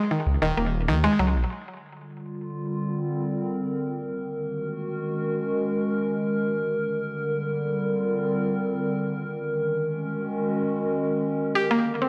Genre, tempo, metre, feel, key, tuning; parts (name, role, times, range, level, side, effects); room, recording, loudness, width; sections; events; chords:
IDM; free time; A4 = 440 Hz
mallet-like synth pluck; arpeggios; 0.1-1.3, 11.6-12.1 s; Eb3 to G4; -26 LUFS; equal; chorus, tape echo
dark detuned saw bass; bass; 0.3-1.4 s; Eb1 to Eb2; -26 LUFS; equal
warbly tape-like pad; sustained chords; 2.1-12.1 s; D3 to Bb4; -28 LUFS; equal; chorus, built-in reverb
moderate echo chamber reverb, RT60 1.3 s, digital ambience; dry, gritty hardware recording; -26 LUFS; mono
0.0-1.5 A section; 1.5-12.1 B section
0.0 Eb7(no3); 1.5 Gm7; 4.0 Ebm7; 6.5 Gm7; 8.9 Ebm7; 11.4 Gm